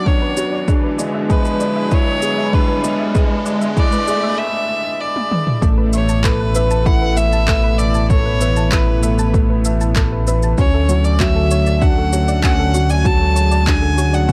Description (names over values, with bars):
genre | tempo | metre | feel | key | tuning
piano and strings electronica | 97 BPM | 4/4 | straight | A major | A4 = 443 Hz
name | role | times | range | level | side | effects
clear violin | melody | 0.0-14.3 s | B4 to A5 | -24 LUFS | equal | none
lush unison pad | sustained chords | 0.0-14.3 s | B2 to E4 | -29 LUFS | equal | chorus, sidechain pumping
felt-muted upright piano | riff | 0.0-14.3 s | F#3 to B4 | -24 LUFS | equal | none
dark detuned saw bass | bass | 0.0-14.3 s | E1 to D2 | -21 LUFS | equal | sidechain pumping, high-pass filter
riser | sound effects | 0.0-4.4 s | none | -29 LUFS | equal | none
soft round pluck | arpeggios | 0.1-14.3 s | F#4 to A5 | -30 LUFS | equal | chorus, sidechain pumping, tape echo
electronic kick drum | drums | 0.1-14.3 s | none | -19 LUFS | equal | overdrive, studio reverb
deep house drum kit | drums | 0.4-14.3 s | handclaps, shaker, toms | -26 LUFS | equal | overdrive, studio reverb
room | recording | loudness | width
light reverb | dark, warm production | -16 LUFS | mono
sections
0.0-5.6 A section; 5.6-14.3 B section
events
build-up 0.0-5.6; riser 0.0-4.4; break 4.4-5.6; drum fill 5.2-5.6; drop 5.6-14.3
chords
0.0 Bmadd9; 0.7 E7; 5.6 Asus2; 10.6 Dmaj7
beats
0.06 | 0.68 1.30 1.92 2.54 | 3.15 3.77 4.39 5.01 | 5.63 6.25 6.87 7.48 | 8.10 8.72 9.34 9.96 | 10.58 11.20 11.81 12.43 | 13.05 13.67 14.29